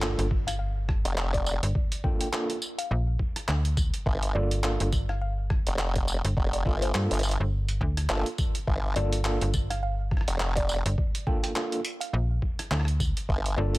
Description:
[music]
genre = glitch hop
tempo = 104 BPM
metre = 4/4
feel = swing 58% on 16ths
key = G minor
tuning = A4 = 440 Hz
[part]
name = overdriven tine electric piano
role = stabs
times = 0.0-13.8 s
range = Bb3 to A4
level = -33 LUFS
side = right 1 dB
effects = medium tremolo, sidechain pumping, digital delay
[part]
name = slap-like FM bass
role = bass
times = 0.0-13.8 s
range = G1 to G2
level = -26 LUFS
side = equal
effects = none
[part]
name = boom bap sampler-style drum kit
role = drums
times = 0.0-13.8 s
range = handclaps, hi-hat, rim click, tambourine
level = -33 LUFS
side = right 1 dB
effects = none
[part]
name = impact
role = sound effects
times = 0.0-1.8 s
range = none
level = -44 LUFS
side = equal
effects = none
[part]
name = electronic kick drum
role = drums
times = 0.3-13.4 s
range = none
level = -28 LUFS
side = equal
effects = none
[part]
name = woody wave-folded pluck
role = melody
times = 0.5-13.8 s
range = C5 to G5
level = -36 LUFS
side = left 1 dB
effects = chorus, cassette tape, digital delay
[part]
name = formant-sweep wobble bass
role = bass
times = 1.1-13.6 s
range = F1 to G1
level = -27 LUFS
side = equal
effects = chorus, tube saturation
[sound]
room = little or no reverb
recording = none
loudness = -25 LUFS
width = side -19 dB against mid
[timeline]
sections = 0.0-13.8 A section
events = impact 0.0-1.8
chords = 0.0 Gm7

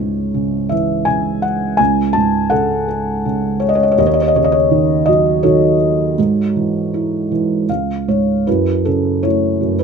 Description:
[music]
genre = classical, lyrical solo piano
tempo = 82 BPM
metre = 3/4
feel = rubato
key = C# minor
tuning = A4 = 440 Hz
[part]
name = felt-muted upright piano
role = solo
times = 0.0-9.8 s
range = C#2 to A5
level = -13 LUFS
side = right 1 dB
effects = none
[sound]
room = light reverb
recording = none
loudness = -13 LUFS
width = side -6 dB against mid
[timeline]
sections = 0.0-8.5 A section; 8.5-9.8 B section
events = felt piano fill 7.3-8.5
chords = 0.0 C#m; 1.8 F#madd9/C#; 4.0 D#m7b5; 6.2 C#m/G#; 7.7 C#; 8.5 F#m7

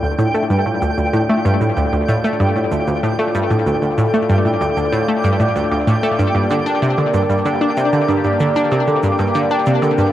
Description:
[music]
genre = ambient, sequencer-driven space music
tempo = 95 BPM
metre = 4/4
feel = straight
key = D minor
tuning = A4 = 440 Hz
[part]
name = sweeping resonant pad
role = sustained chords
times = 0.0-10.1 s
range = A3 to D5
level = -19 LUFS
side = equal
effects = chorus
[part]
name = analog pluck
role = riff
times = 0.0-10.1 s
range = D2 to D4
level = -16 LUFS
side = equal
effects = chorus, ping-pong delay
[part]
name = cabasa and percussion blips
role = percussion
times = 0.0-10.1 s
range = none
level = -37 LUFS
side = equal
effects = cassette tape, ping-pong delay
[part]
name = twinkling granular texture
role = texture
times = 0.0-10.1 s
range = G5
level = -26 LUFS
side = right 2 dB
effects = built-in reverb
[sound]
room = wet spring reverb, RT60 2.9 s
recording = home recording on cassette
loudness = -14 LUFS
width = side -12 dB against mid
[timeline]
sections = 0.0-10.1 A section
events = fade-in on analog synth pad 0.0-10.1; fade-in on drum 0.0-10.1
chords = 0.0 Dm; 6.2 Gm

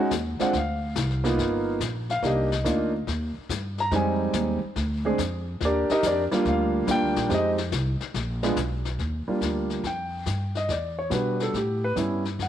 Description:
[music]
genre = jazz piano trio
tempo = 142 BPM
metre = 4/4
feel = swing 68% on 8ths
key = Eb major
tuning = A4 = 440 Hz
[part]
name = warm grand piano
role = melody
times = 0.0-12.5 s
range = G3 to Bb5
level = -25 LUFS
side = right 1 dB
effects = none
[part]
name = upright bass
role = bass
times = 0.1-12.5 s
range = G1 to B2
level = -29 LUFS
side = equal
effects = none
[part]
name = vintage brush drum kit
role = drums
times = 0.1-12.5 s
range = brushed snare drum, hi-hat, kick drum, snare drum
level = -34 LUFS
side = left 9 dB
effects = none
[sound]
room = light reverb, studio reverb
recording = 1960s-style stereo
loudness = -23 LUFS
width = side -10 dB against mid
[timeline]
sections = 0.0-9.0 A section; 9.0-12.5 B section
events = grand piano solo 0.0-9.0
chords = 0.0 B6 (rootless); 0.5 Csus4; 1.4 G7alt; 2.2 Cm9; 3.9 Fm7; 4.8 Ddim; 5.6 Ebmaj9; 7.3 Fm7; 8.1 Bb5; 9.0 Ebmaj9; 10.7 Em7; 11.5 A9

